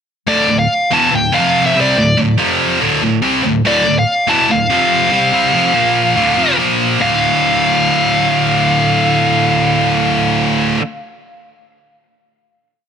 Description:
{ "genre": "metal", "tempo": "142 BPM", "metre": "4/4", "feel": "straight", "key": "D minor", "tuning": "A4 = 442 Hz", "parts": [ { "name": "high-gain lead guitar", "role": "melody", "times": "0.3-10.8 s", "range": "D5 to A5", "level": "-15 LUFS", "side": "left 1 dB", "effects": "distortion" }, { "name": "scooped high-gain guitar", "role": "riff", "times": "0.3-10.8 s", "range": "D2 to C4", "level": "-13 LUFS", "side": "equal", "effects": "distortion" } ], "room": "digital ambience", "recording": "none", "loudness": "-11 LUFS", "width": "side -7 dB against mid", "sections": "0.3-7.0 riff; 7.0-10.4 final chord", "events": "none", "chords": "0.3 D5; 1.3 F5; 1.8 D5; 2.4 F5; 2.8 D5; 4.7 F5; 5.1 Fsus2; 5.8 Bb5; 6.2 Dm; 6.6 Bb5; 7.0 Dm" }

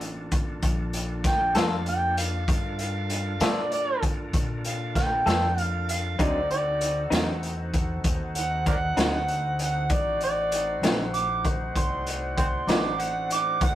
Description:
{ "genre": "slow blues", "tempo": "65 BPM (dotted quarters)", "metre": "12/8", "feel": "straight", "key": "G minor", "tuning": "A4 = 440 Hz", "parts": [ { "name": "bright tonewheel organ", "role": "sustained chords", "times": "0.0-13.8 s", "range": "A3 to Bb4", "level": "-38 LUFS", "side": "right 1 dB", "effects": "slow rotary speaker, overdrive" }, { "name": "upright bass", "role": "bass", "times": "0.0-13.8 s", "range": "A1 to Bb2", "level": "-31 LUFS", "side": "equal", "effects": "none" }, { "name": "raw garage drum kit", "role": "drums", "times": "0.0-13.8 s", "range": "hi-hat, kick drum, snare drum", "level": "-27 LUFS", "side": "equal", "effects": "none" }, { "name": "overdriven harmonica", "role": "second line", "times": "1.3-13.8 s", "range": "Bb4 to D6", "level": "-27 LUFS", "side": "right 2 dB", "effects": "none" }, { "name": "electric guitar through a small old amp", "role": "accompaniment", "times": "1.6-12.9 s", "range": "D3 to A4", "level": "-28 LUFS", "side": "left 2 dB", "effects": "tremolo" }, { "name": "mellow horn section", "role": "sustained chords", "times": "6.2-13.8 s", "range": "Eb4 to F#5", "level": "-35 LUFS", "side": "left 2 dB", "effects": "none" } ], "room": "moderate studio reverb, RT60 0.6 s", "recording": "rough rehearsal-room recording", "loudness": "-23 LUFS", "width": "side -13 dB against mid", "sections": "0.0-13.8 A section", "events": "harmonica solo 0.0-13.8", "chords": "0.0 Gm9; 6.2 D7b9" }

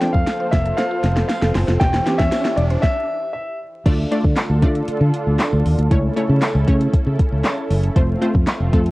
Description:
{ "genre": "dance-pop", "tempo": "117 BPM", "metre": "4/4", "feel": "straight", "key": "D minor", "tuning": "A4 = 440 Hz", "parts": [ { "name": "warm concert grand piano", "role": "melody", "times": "0.0-3.6 s", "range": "D5 to G5", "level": "-23 LUFS", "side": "left 1 dB", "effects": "analog delay" }, { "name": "wide unison pluck", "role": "accompaniment", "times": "0.0-8.9 s", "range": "E3 to D5", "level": "-23 LUFS", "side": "equal", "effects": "sidechain pumping" }, { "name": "lush unison pad", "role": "sustained chords", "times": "0.0-8.9 s", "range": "C#3 to C5", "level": "-27 LUFS", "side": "right 1 dB", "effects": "chorus, sidechain pumping" }, { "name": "mallet-like synth pluck", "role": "arpeggios", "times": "0.0-2.8 s", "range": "E4 to C5", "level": "-30 LUFS", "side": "right 1 dB", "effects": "chorus, sidechain pumping" }, { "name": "smooth R&B drum kit", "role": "drums", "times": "0.0-8.9 s", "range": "crash cymbal, handclaps, hi-hat, kick drum, snare drum", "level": "-18 LUFS", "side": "equal", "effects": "none" }, { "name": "riser", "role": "sound effects", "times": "0.0-2.8 s", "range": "none", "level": "-30 LUFS", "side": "equal", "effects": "none" }, { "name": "fingered electric bass", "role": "bass", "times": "0.1-8.9 s", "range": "E1 to D3", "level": "-18 LUFS", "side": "equal", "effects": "sidechain pumping" }, { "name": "tambourine", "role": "percussion", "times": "0.3-8.6 s", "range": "none", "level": "-43 LUFS", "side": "right 2 dB", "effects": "none" } ], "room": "light reverb", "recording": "worn, warbling old tape, cassette tape, vinyl crackle, warbly pitch drift", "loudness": "-16 LUFS", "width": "side -20 dB against mid", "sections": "0.0-3.9 A section; 3.9-8.9 B section", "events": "build-up 0.0-3.9; drum fill 0.0-2.8; riser 0.0-3.9; stop 2.8-3.9; drop 3.9-8.9", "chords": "0.0 F; 1.8 C/E; 3.9 Dm; 5.9 A/C#; 8.0 F" }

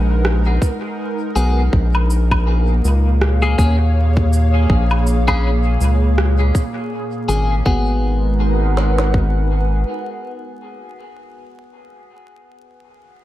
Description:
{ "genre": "ambient dub", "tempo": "81 BPM", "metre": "4/4", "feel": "swing 57% on 16ths", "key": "G# dorian", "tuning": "A4 = 441 Hz", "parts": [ { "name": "airy breathy pad", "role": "sustained chords", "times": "0.0-11.3 s", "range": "A#2 to F#5", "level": "-23 LUFS", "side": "right 1 dB", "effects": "chorus" }, { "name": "round analog bass", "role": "bass", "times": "0.0-9.8 s", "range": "G#1 to D#2", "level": "-15 LUFS", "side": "equal", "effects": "none" }, { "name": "electronic rim click, cabasa and woodblock", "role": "drums", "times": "0.2-7.5 s", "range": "none", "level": "-25 LUFS", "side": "equal", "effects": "overdrive, dub echo" }, { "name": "organic electronic drum kit", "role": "drums", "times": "0.6-9.3 s", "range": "kick drum, snare drum", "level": "-18 LUFS", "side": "equal", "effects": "overdrive" }, { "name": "clean electric guitar", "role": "stabs", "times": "1.4-10.8 s", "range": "A#3 to G#4", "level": "-26 LUFS", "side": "left 3 dB", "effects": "phaser, dub echo" } ], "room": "little or no reverb", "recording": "vinyl crackle", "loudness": "-14 LUFS", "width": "side -14 dB against mid", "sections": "0.0-7.7 A section; 7.7-10.6 B section", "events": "none", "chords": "0.0 G#m7; 1.7 A#m7; 7.7 G#m7" }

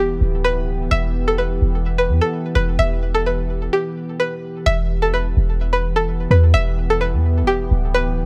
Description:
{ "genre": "hip hop, trap", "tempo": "128 BPM", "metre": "4/4", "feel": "half-time", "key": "E minor", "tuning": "A4 = 440 Hz", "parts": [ { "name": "string-like resonator pluck", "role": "melody", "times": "0.0-8.3 s", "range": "G4 to E5", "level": "-23 LUFS", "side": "equal", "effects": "chorus, delay" }, { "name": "deep dark ambient pad", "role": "sustained chords", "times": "0.0-8.3 s", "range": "E3 to G4", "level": "-29 LUFS", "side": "equal", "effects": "chorus, built-in reverb" }, { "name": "clean 808-style bass", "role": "bass", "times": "0.0-8.3 s", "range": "D1 to E2", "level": "-21 LUFS", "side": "equal", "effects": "none" } ], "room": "little or no reverb", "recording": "none", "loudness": "-19 LUFS", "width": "mono", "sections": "0.0-4.7 A section; 4.7-8.3 B section", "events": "break 3.7-4.7", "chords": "0.0 Em" }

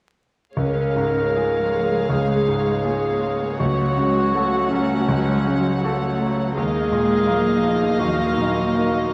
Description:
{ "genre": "cinematic, emotional film score for orchestra", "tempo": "80 BPM", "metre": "4/4", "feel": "rubato", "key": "Db major", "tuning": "A4 = 440 Hz", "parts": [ { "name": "dark studio violin section", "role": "second line", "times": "0.6-9.1 s", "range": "Db5 to Gb5", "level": "-31 LUFS", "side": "equal", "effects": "none" }, { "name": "warm clarinet", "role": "second line", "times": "0.6-9.1 s", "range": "Db4 to Bb4", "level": "-25 LUFS", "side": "equal", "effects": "none" }, { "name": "bright concert grand piano", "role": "accompaniment", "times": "0.6-9.1 s", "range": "Db2 to F5", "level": "-26 LUFS", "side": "equal", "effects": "none" }, { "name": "warm symphonic viola section", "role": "accompaniment", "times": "0.6-9.1 s", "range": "Gb3 to Ab4", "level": "-29 LUFS", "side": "equal", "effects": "none" }, { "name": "dark symphonic cello section", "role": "bass", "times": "0.6-9.1 s", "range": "F3 to Db4", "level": "-29 LUFS", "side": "equal", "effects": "none" } ], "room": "wet recital hall reverb, RT60 1.8 s", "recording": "vinyl crackle", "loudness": "-20 LUFS", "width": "mono", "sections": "0.6-9.1 A section", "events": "none", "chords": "0.6 Db; 3.6 Gbm/Db; 6.6 Ebmadd9" }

